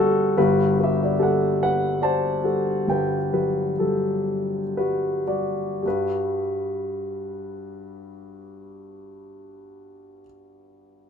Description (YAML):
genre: folk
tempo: 35-50 BPM (dotted quarters)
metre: 6/8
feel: straight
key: G major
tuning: A4 = 439 Hz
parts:
  - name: warm concert grand piano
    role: melody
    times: 0.0-11.1 s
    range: G1 to A5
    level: -22 LUFS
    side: left 1 dB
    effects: none
room: little or no reverb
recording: minimal, uncompressed stereo recording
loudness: -21 LUFS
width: side -7 dB against mid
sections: 0.4-5.8 A section; 5.8-9.2 B section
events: slowing down 0.4-5.8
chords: 0.4 Gmaj7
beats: | 0.37 1.59 | 2.88 4.27 | 5.85 7.54